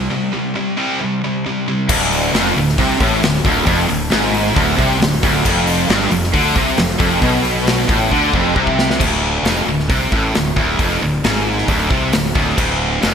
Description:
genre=hard rock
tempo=135 BPM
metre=4/4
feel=straight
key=D dorian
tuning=A4 = 439 Hz
part: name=heavy high-gain guitar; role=riff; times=0.0-13.1 s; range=D2 to C4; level=-17 LUFS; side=equal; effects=distortion
part: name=fuzz fingered electric bass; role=bass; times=0.0-13.1 s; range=D1 to D2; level=-22 LUFS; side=equal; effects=overdrive
part: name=crunchy overdriven guitar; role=riff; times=1.9-9.0 s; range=D2 to D3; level=-18 LUFS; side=equal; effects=analog chorus
part: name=big rock drum kit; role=drums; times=1.9-13.1 s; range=crash cymbal, hi-hat, kick drum, snare drum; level=-19 LUFS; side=equal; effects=gated reverb
room=moderate lush hall reverb, RT60 1.8 s, small room ambience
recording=bright 1980s-style digital production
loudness=-13 LUFS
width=side -7 dB against mid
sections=0.0-1.9 A section; 1.9-9.0 B section; 9.0-13.1 C section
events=drum fill 8.1-9.0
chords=0.0 C5; 1.9 Dm; 5.5 F5; 9.0 Dm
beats=| 0.11 0.56 1.00 1.45 | 1.90 2.34 2.79 3.23 | 3.68 4.12 4.57 5.01 | 5.46 5.90 6.34 6.79 | 7.23 7.68 8.12 8.57 | 9.01 9.46 9.90 10.35 | 10.79 11.24 11.68 12.13 | 12.57 13.02

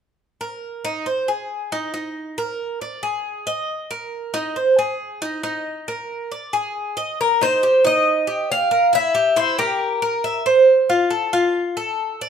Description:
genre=latin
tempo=137 BPM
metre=4/4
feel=straight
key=Eb major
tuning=A4 = 440 Hz
part: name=Cuban tres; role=arpeggios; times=0.4-12.3 s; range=Eb4 to E5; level=-21 LUFS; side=right 1 dB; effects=none
part: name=Cuban tres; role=melody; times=7.2-10.4 s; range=Bb4 to F5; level=-16 LUFS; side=left 1 dB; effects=none
room=light reverb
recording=minimal, uncompressed stereo recording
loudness=-18 LUFS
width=side -8 dB against mid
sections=0.2-7.2 A section; 7.2-12.3 B section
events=none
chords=0.2 Eb5; 1.1 Ab; 1.9 Eb5; 2.8 Ab5; 3.7 Eb5; 4.6 Ab; 5.4 Eb5; 6.3 Ab5; 7.2 Eb6; 8.9 C7; 10.7 F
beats=| 0.20 0.63 1.07 1.51 | 1.94 2.38 2.82 3.25 | 3.69 4.13 4.57 5.00 | 5.44 5.88 6.31 6.75 | 7.19 7.62 8.06 8.50 | 8.93 9.37 9.81 10.24 | 10.68 11.11 11.55 11.99

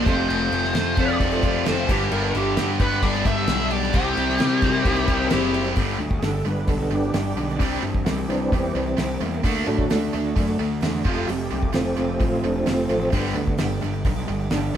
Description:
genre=classic rock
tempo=131 BPM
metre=4/4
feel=straight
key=G mixolydian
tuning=A4 = 440 Hz
part: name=bluesy overdriven lead guitar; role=melody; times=0.0-5.3 s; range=G4 to E5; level=-25 LUFS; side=equal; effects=wah, distortion
part: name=picked steel-string acoustic guitar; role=accompaniment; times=0.0-14.8 s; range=G2 to A4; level=-33 LUFS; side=right 3 dB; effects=none
part: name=bright tonewheel organ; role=sustained chords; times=0.0-14.7 s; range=D3 to C5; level=-28 LUFS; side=right 1 dB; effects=slow rotary speaker, overdrive, chorus vibrato
part: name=crunchy overdriven guitar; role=riff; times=0.0-14.8 s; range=F2 to D4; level=-28 LUFS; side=left 8 dB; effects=spring reverb
part: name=crunchy overdriven guitar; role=riff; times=0.0-5.8 s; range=F2 to C4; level=-28 LUFS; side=left 2 dB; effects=none
part: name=tight distorted guitar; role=riff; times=0.0-14.8 s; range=F2 to G4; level=-28 LUFS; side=right 6 dB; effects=distortion
part: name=fuzz picked electric bass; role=bass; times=0.0-14.8 s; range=F1 to C3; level=-28 LUFS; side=equal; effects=overdrive
part: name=damped 70s drum kit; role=drums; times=0.1-14.6 s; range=crash cymbal, hi-hat, kick drum, snare drum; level=-26 LUFS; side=equal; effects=none
part: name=overdriven slide guitar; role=second line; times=1.0-5.7 s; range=G4 to D5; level=-27 LUFS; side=left 1 dB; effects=none
room=moderate stone room reverb, RT60 0.9 s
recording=band playing live in one room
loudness=-20 LUFS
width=side -9 dB against mid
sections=0.0-5.8 A section; 5.8-14.8 B section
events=tonewheel organ solo 5.8-14.8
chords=0.1 F; 1.9 G; 3.9 C; 5.8 G; 7.6 C; 9.4 D; 11.1 F; 13.1 G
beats=| 0.29 0.75 1.20 1.66 | 2.12 2.57 3.03 3.48 | 3.94 4.39 4.85 5.31 | 5.77 6.22 6.68 7.14 | 7.60 8.06 8.52 8.98 | 9.44 9.90 10.36 10.82 | 11.29 11.75 12.21 12.67 | 13.13 13.60 14.06 14.52

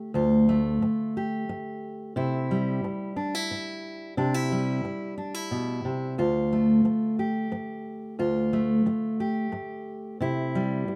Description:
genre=acoustic folk duo or small band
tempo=90 BPM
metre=3/4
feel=straight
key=D minor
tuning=A4 = 440 Hz
part: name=fingerpicked steel-string acoustic guitar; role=solo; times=0.0-11.0 s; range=D2 to G4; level=-27 LUFS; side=equal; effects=none
room=moderate large studio reverb, RT60 1.1 s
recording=none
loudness=-27 LUFS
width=mono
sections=0.0-11.0 A section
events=none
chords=0.0 Dm; 2.2 Cadd9; 6.2 Dm; 10.2 C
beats=| 0.15 0.82 1.49 | 2.16 2.83 3.50 | 4.17 4.84 5.51 | 6.18 6.85 7.52 | 8.20 8.87 9.54 | 10.21 10.88

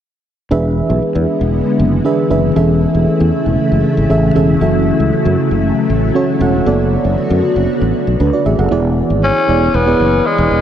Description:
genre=pop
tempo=117 BPM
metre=4/4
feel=straight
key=unclear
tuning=A4 = 435 Hz
part: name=FM electric piano with tremolo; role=accompaniment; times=0.5-10.6 s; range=E3 to F#5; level=-16 LUFS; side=right 3 dB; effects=none
part: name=soft string machine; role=sustained chords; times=1.0-8.7 s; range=C#3 to F#4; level=-17 LUFS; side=left 2 dB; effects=phaser, ensemble chorus
part: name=sustaining fretless electric bass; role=bass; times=0.5-10.6 s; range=E1 to F#2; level=-16 LUFS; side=equal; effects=none
part: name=raspy tenor saxophone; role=melody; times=9.2-10.6 s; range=G#3 to C#4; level=-13 LUFS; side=left 2 dB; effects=none
room=wet huge ambient reverb, RT60 8.3 s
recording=dreamy mix soaked in reverb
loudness=-11 LUFS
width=side -10 dB against mid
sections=0.5-8.7 A section; 8.7-10.6 B section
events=none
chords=0.5 E7; 2.6 Amaj7/E; 4.6 F#m7; 6.7 Bm7/F#; 8.7 E7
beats=| 0.51 1.02 1.54 2.05 | 2.56 3.08 3.59 4.10 | 4.61 5.13 5.64 6.15 | 6.67 7.18 7.69 8.20 | 8.72 9.23 9.74 10.25

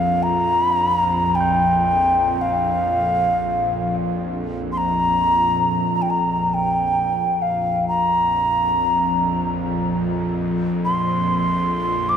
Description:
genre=world meditative, free-time meditation music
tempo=free time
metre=none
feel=none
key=unclear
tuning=A4 = 440 Hz
part: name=breathy reedy alto ocarina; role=melody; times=0.0-12.2 s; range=F5 to D6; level=-19 LUFS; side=equal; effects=tape echo
part: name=bowed-like drone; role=drone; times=0.0-12.2 s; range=Bb1 to F2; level=-23 LUFS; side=equal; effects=built-in reverb
part: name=tubular bells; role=texture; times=0.0-8.9 s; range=C5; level=-38 LUFS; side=right 3 dB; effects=none
room=wet plate reverb, RT60 3.7 s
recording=echo-heavy mix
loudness=-17 LUFS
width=side -8 dB against mid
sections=0.0-12.2 A section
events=none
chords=none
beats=free time

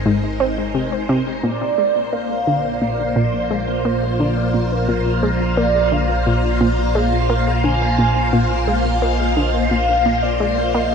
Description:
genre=ambient, sequencer-driven space music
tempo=87 BPM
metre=4/4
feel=straight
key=unclear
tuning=A4 = 442 Hz
part: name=phased string machine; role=sustained chords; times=0.0-10.9 s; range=Ab3 to F5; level=-22 LUFS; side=equal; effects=ensemble chorus, phaser
part: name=analog drone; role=bass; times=0.0-10.9 s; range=Ab1 to Bb1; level=-22 LUFS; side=equal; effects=chorus
part: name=analog pluck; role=riff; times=0.1-10.9 s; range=Ab2 to C4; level=-21 LUFS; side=equal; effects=chorus, ping-pong delay
part: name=mellow horn-like synth lead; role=melody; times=1.4-10.9 s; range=Bb4 to Ab5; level=-21 LUFS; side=right 1 dB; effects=lush chorus, ping-pong delay
room=moderate huge ambient reverb, RT60 8.4 s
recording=none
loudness=-16 LUFS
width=side -6 dB against mid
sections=0.0-10.9 A section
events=none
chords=0.0 Ab; 1.4 Bb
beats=0.06 0.75 | 1.44 2.12 2.81 3.50 | 4.19 4.88 5.57 6.26 | 6.95 7.64 8.33 9.02 | 9.71 10.40

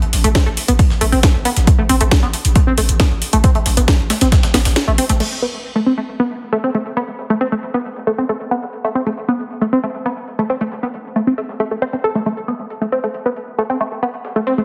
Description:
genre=driving peak-time techno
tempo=136 BPM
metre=4/4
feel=straight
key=A minor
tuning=A4 = 439 Hz
part: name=growling 808-style bass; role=bass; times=0.0-5.2 s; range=A1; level=-19 LUFS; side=equal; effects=overdrive, sidechain pumping, low-pass filter
part: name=breakbeat sampler-style drum kit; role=drums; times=0.0-14.6 s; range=hi-hat, snare drum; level=-30 LUFS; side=equal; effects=none
part: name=techno drum kit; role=drums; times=0.1-5.3 s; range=crash cymbal, hi-hat, snare drum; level=-22 LUFS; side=equal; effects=sidechain pumping on hats, small room reverb, sidechain pumping on cymbals
part: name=tight sequenced synth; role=riff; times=0.2-14.6 s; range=A3 to A4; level=-21 LUFS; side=equal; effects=chorus, phaser, cassette tape, sidechain pumping, tape echo
part: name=electronic kick drum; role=drums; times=0.3-4.4 s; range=none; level=-15 LUFS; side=equal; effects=overdrive, small room reverb
room=light reverb, digital ambience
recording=heavily compressed radio sound, multiband compression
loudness=-17 LUFS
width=mono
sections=0.0-5.2 A section; 5.2-14.6 B section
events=drop 0.0-5.2; break 4.8-5.2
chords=0.0 Am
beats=0.35 0.79 1.23 | 1.67 2.12 2.56 3.00 | 3.44 3.88 4.32 4.76 | 5.20 5.64 6.08 6.53 | 6.97 7.41 7.85 8.29 | 8.73 9.17 9.62 10.06 | 10.50 10.94 11.38 11.82 | 12.26 12.70 13.14 13.59 | 14.03 14.47

